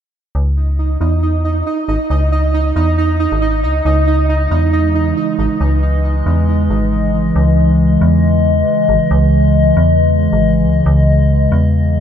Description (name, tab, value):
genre	IDM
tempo	137 BPM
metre	4/4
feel	swing 56% on 16ths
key	C# minor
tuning	A4 = 441 Hz
part	metallic FM bass	bass	0.3-12.0 s	G#1 to E2	-14 LUFS	equal	none
part	pulsing gated texture	texture	0.3-7.4 s	D#4 to D#5	-19 LUFS	right 4 dB	chorus, built-in reverb
part	warbly tape-like pad	sustained chords	4.3-12.0 s	C#3 to D#5	-14 LUFS	left 1 dB	chorus, built-in reverb
room	moderate lush hall reverb, RT60 2.3 s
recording	rough home demo mix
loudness	-11 LUFS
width	side -9 dB against mid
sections	0.4-7.4 A section; 7.4-12.0 B section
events	filter sweep on FM bass 0.4-7.4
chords	0.4 C#madd9